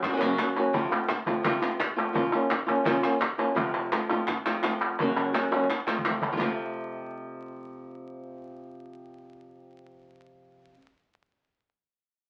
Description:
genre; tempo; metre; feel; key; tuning
flamenco; 169 BPM; 4/4; straight; unclear; A4 = 439 Hz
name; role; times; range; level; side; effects
flamenco guitar; melody; 0.0-10.8 s; F2 to Gb4; -30 LUFS; equal; none
cajon; percussion; 0.0-6.5 s; none; -36 LUFS; equal; none
palmas hand claps; percussion; 0.0-6.5 s; none; -32 LUFS; equal; none
room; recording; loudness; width
wet studio ambience, RT60 0.5 s; very old 78 rpm record, vinyl crackle; -27 LUFS; mono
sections
0.0-6.4 A section; 6.4-9.3 B section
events
drum fill 5.5-6.4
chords
0.0 Gb; 0.7 F; 2.2 Bbm; 3.6 F; 5.0 Gb; 5.7 F

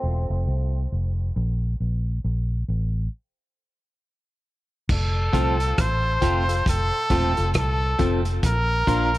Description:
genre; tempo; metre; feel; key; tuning
dub reggae; 68 BPM; 4/4; swing 60% on 16ths; F major; A4 = 441 Hz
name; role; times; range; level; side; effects
muted trombone section; second line; 0.0-0.9 s; F3 to C4; -34 LUFS; right 1 dB; tape echo
vintage muted fingered electric bass; bass; 0.0-9.2 s; E1 to C2; -23 LUFS; equal; none
bright trumpet; melody; 4.9-9.2 s; A4 to C5; -24 LUFS; equal; tape echo
vintage drum kit; drums; 4.9-9.2 s; crash cymbal, hi-hat, kick drum, rim click; -26 LUFS; equal; none
electric guitar at the edge of break-up; accompaniment; 5.3-9.1 s; F3 to F4; -30 LUFS; right 3 dB; tape echo
percussive organ stab; stabs; 5.3-9.1 s; C4 to Bb4; -28 LUFS; left 3 dB; chorus, tape echo
room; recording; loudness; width
light reverb; echo-heavy mix; -21 LUFS; side -17 dB against mid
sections
0.0-4.9 A section; 4.9-9.2 B section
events
break 0.0-4.9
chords
0.0 F; 1.4 N.C.; 4.9 F; 8.4 Bb

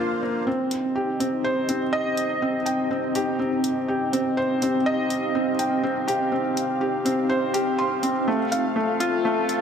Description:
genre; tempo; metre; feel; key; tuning
piano and strings electronica; 123 BPM; 4/4; straight; C dorian; A4 = 440 Hz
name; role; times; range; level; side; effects
lush unison pad; sustained chords; 0.0-9.6 s; C4 to F5; -27 LUFS; equal; chorus, phaser
felt-muted upright piano; riff; 0.0-9.6 s; A3 to C6; -23 LUFS; equal; digital delay
electronic hi-hat; drums; 0.7-9.6 s; none; -33 LUFS; left 2 dB; high-pass filter on hats, high-pass filter on room
room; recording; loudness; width
wet concert hall reverb, RT60 1.9 s, digital ambience; high-pass filter; -21 LUFS; side -7 dB against mid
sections
0.5-9.6 A section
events
build-up 0.5-9.6; filter sweep on analog synth pad 0.5-9.6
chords
0.5 Cm; 8.3 F

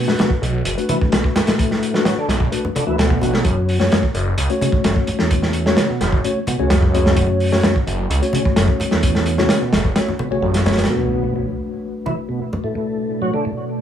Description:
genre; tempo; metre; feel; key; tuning
breakbeat, breaks; 129 BPM; 4/4; straight; B minor; A4 = 439 Hz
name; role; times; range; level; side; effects
overdriven tonewheel organ; riff; 0.0-13.5 s; E2 to F#3; -22 LUFS; right 1 dB; chorus vibrato, slow rotary speaker, low-pass filter, dub echo
mellow tine electric piano; stabs; 0.0-13.8 s; A3 to C#5; -22 LUFS; left 4 dB; fast stereo tremolo, vintage 12-bit sampler grit, low-pass filter, dub echo
crunchy breakbeat drum kit; drums; 0.1-10.9 s; hi-hat, kick drum, snare drum; -19 LUFS; equal; none
phased detuned saw bass; bass; 0.4-10.9 s; E1 to D2; -20 LUFS; equal; phaser, tube saturation
congas; percussion; 0.9-12.6 s; none; -25 LUFS; equal; none
deep dark ambient pad; sustained chords; 12.4-13.8 s; B2 to D5; -26 LUFS; right 1 dB; chorus, built-in reverb, vintage 12-bit sampler grit, sidechain pumping
impact; sound effects; 10.9-12.8 s; none; -29 LUFS; right 1 dB; none
room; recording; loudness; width
light reverb; small room ambience; -16 LUFS; side -9 dB against mid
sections
0.0-10.9 A section; 10.9-13.8 B section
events
impact 10.9-12.8; filter sweep on tonewheel organ 10.9-13.8; filter sweep on tine electric piano 10.9-13.8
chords
0.0 Bm7; 3.5 F#m; 10.9 Bm7

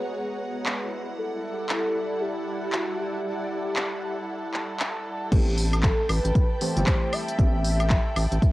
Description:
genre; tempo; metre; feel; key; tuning
deep house; 116 BPM; 4/4; swing 60% on 16ths; A dorian; A4 = 441 Hz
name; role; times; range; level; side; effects
warm velvety synth lead; melody; 0.0-8.5 s; F#4 to E5; -31 LUFS; equal; chorus, tremolo, cassette tape, analog delay
soft string machine; sustained chords; 0.0-8.5 s; G3 to B5; -35 LUFS; equal; ensemble chorus, sidechain pumping, cassette tape
dark studio string section; texture; 0.0-8.5 s; E4 to G5; -35 LUFS; equal; sidechain pumping, cassette tape
house drum kit; drums; 0.7-8.5 s; crash cymbal, handclaps, hi-hat, woodblock; -30 LUFS; equal; studio ambience, cassette tape
deep mellow chord stab; stabs; 5.3-8.5 s; E3 to G4; -32 LUFS; right 1 dB; chorus, sidechain pumping, cassette tape, analog delay
rubbery square bass; bass; 5.3-8.4 s; G1 to A1; -24 LUFS; equal; sidechain pumping
electronic kick drum; drums; 5.3-8.5 s; none; -21 LUFS; equal; overdrive, studio ambience, cassette tape
room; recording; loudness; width
digital ambience; home recording on cassette; -23 LUFS; side -18 dB against mid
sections
0.0-5.3 A section; 5.3-8.5 B section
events
drop 5.3-8.5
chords
0.0 G#m9; 0.9 Em9; 5.3 Am9

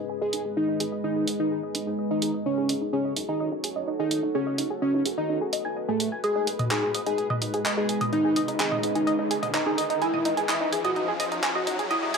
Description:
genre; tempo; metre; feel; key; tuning
melodic techno; 127 BPM; 4/4; straight; G# phrygian; A4 = 440 Hz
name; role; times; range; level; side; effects
deep dark ambient pad; sustained chords; 0.0-12.2 s; G#3 to D#5; -32 LUFS; equal; chorus, built-in reverb
tight sequenced synth; arpeggios; 0.0-12.2 s; D#4 to G#5; -29 LUFS; right 1 dB; chorus, phaser, tape echo
round analog bass; bass; 0.0-12.2 s; E1 to G#2; -43 LUFS; equal; none
wide unison lead; melody; 0.2-12.2 s; A3 to G#4; -28 LUFS; equal; analog delay
house drum kit; drums; 0.3-12.2 s; handclaps, hi-hat, toms; -30 LUFS; right 1 dB; none
riser; sound effects; 7.1-12.2 s; none; -34 LUFS; right 1 dB; none
room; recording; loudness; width
light reverb, digital ambience; dry, gritty hardware recording, high-pass filter; -24 LUFS; side -5 dB against mid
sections
0.0-12.2 A section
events
build-up 0.0-12.2; filter sweep on synth arpeggio sound 0.0-12.2; riser 7.1-12.2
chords
0.0 G#m; 2.5 F#m; 6.2 G#m; 10.0 C#m

